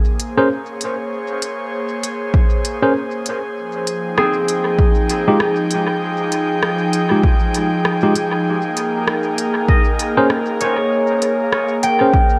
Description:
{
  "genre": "ambient dub",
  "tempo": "98 BPM",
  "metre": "4/4",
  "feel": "swing 59% on 16ths",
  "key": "unclear",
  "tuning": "A4 = 439 Hz",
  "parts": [
    { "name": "airy breathy pad", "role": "sustained chords", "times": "0.0-12.4 s", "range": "F3 to G5", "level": "-22 LUFS", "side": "equal", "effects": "chorus" },
    { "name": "organic electronic drum kit", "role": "drums", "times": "0.2-12.0 s", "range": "hi-hat, rim click", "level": "-27 LUFS", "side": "equal", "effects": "dub echo" },
    { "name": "tine electric piano", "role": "stabs", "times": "0.4-12.1 s", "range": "Ab3 to C5", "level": "-21 LUFS", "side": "equal", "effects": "dub echo" },
    { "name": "electronic kick drum", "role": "drums", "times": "2.3-12.3 s", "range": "none", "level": "-17 LUFS", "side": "equal", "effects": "none" },
    { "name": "concert harp", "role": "arpeggios", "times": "4.2-12.4 s", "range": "C4 to G5", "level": "-22 LUFS", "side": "equal", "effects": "vintage 12-bit sampler grit, dub echo" }
  ],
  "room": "moderate echo chamber reverb, RT60 2.2 s",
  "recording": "echo-heavy mix",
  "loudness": "-18 LUFS",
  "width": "mono",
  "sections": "0.0-12.4 A section",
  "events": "fade-in on analog synth pad 0.0-12.4",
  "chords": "0.0 Bbm9; 3.6 Fm9; 8.5 Bbm7",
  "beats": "0.50 | 1.12 1.73 2.34 2.95 | 3.56 4.18 4.79 5.40 | 6.01 6.63 7.24 7.85 | 8.46 9.07 9.69 10.30 | 10.91 11.52 12.14"
}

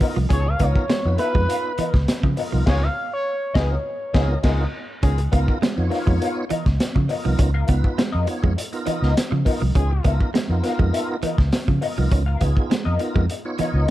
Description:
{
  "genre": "funk",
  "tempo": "102 BPM",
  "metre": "4/4",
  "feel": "straight",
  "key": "Db mixolydian",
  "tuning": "A4 = 440 Hz",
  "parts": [
    { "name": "electric guitar at the edge of break-up", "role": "accompaniment", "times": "0.0-13.9 s", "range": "Cb4 to F5", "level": "-29 LUFS", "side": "left 5 dB", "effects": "wah" },
    { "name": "direct-recorded clean electric guitar", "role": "riff", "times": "0.0-13.7 s", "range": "Fb3 to Db4", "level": "-30 LUFS", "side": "right 9 dB", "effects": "none" },
    { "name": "tonewheel organ", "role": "stabs", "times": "0.0-13.9 s", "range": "Cb4 to Db5", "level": "-29 LUFS", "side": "right 2 dB", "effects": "overdrive, chorus vibrato, slow rotary speaker" },
    { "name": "crunchy breakbeat drum kit", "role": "drums", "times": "0.0-13.9 s", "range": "crash cymbal, hi-hat, kick drum, snare drum", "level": "-22 LUFS", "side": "equal", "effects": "none" },
    { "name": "vintage muted fingered electric bass", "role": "bass", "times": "0.2-13.8 s", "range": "C2 to Db3", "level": "-21 LUFS", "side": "equal", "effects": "none" },
    { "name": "expressive synth lead", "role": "melody", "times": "0.3-4.7 s", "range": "Cb5 to F5", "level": "-26 LUFS", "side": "equal", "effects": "chorus, analog delay" },
    { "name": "brilliant trombone", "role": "second line", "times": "0.3-5.2, 9.8-10.1 s", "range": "Ab4", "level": "-35 LUFS", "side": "left 6 dB", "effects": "none" }
  ],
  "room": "little or no reverb",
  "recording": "dark, warm production",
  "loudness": "-18 LUFS",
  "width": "side -15 dB against mid",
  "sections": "0.0-5.0 A section; 5.0-13.9 B section",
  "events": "band accent 2.7-5.0",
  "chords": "0.0 Db13",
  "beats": "| 0.31 0.90 1.49 2.08 | 2.67 3.26 3.85 4.44 | 5.03 5.62 6.21 6.80 | 7.39 7.98 8.57 9.16 | 9.76 10.35 10.94 11.53 | 12.12 12.71 13.29 13.88"
}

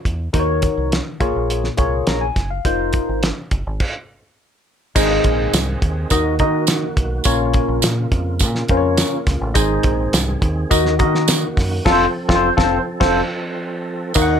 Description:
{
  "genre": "uptempo 1960s-style soul",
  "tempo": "104 BPM",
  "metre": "4/4",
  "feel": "straight",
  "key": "Bb minor",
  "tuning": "A4 = 440 Hz",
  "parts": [
    { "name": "deep dub fingered electric bass", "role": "bass", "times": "0.1-14.4 s", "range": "F1 to Eb3", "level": "-22 LUFS", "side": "equal", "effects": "none" },
    { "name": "cloth-damped thuddy drum kit", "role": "drums", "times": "0.1-14.3 s", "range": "crash cymbal, hi-hat, kick drum, ride cymbal, snare drum", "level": "-20 LUFS", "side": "right 1 dB", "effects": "none" },
    { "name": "barky tine electric piano", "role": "accompaniment", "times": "0.3-14.4 s", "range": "Ab2 to Bb5", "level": "-18 LUFS", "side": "left 2 dB", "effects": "overdrive, analog chorus" },
    { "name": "percussive tonewheel organ", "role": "sustained chords", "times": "5.0-14.4 s", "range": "Db3 to A4", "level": "-27 LUFS", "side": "right 2 dB", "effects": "slow rotary speaker, overdrive, chorus vibrato" },
    { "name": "tambourine", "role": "percussion", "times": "5.0-14.3 s", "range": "none", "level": "-22 LUFS", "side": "right 7 dB", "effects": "none" }
  ],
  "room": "light reverb",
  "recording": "none",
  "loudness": "-16 LUFS",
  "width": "side -8 dB against mid",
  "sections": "0.0-5.0 A section; 5.0-14.2 B section",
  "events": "stop 3.8-5.0; band accent 11.9-14.2",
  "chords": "0.3 Ebm7; 1.2 Bbm7; 2.7 F7sus4; 3.8 N.C.; 5.0 Ab; 6.1 Ebm; 7.3 Bbm; 9.6 Ab; 10.7 Ebm; 11.9 F",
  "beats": "| 0.34 0.92 1.50 2.08 | 2.65 3.23 3.81 4.38 | 4.96 5.53 6.11 6.68 | 7.26 7.83 8.41 8.98 | 9.56 10.13 10.71 11.28 | 11.86 12.43 13.01 13.58 | 14.16"
}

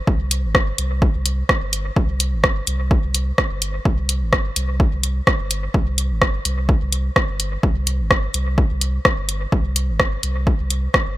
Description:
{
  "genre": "dub techno",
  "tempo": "127 BPM",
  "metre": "4/4",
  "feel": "swing 55% on 16ths",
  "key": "unclear",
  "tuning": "A4 = 440 Hz",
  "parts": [
    { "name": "warm sub bass", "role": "bass", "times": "0.1-11.2 s", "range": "G1 to C2", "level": "-22 LUFS", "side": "equal", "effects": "sidechain pumping" },
    { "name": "electronic kick drum", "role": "drums", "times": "0.1-11.0 s", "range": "none", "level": "-18 LUFS", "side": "equal", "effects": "none" },
    { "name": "deep house drum kit", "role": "drums", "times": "0.3-11.0 s", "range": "hi-hat, rim click", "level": "-21 LUFS", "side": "equal", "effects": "dub echo" }
  ],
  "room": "little or no reverb",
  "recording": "none",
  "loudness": "-17 LUFS",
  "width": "side -16 dB against mid",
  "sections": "0.0-11.2 A section",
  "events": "none",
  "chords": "none",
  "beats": "| 0.07 0.55 1.02 1.49 | 1.97 2.44 2.91 3.38 | 3.85 4.33 4.80 5.27 | 5.74 6.22 6.69 7.16 | 7.63 8.11 8.58 9.05 | 9.52 10.00 10.47 10.94"
}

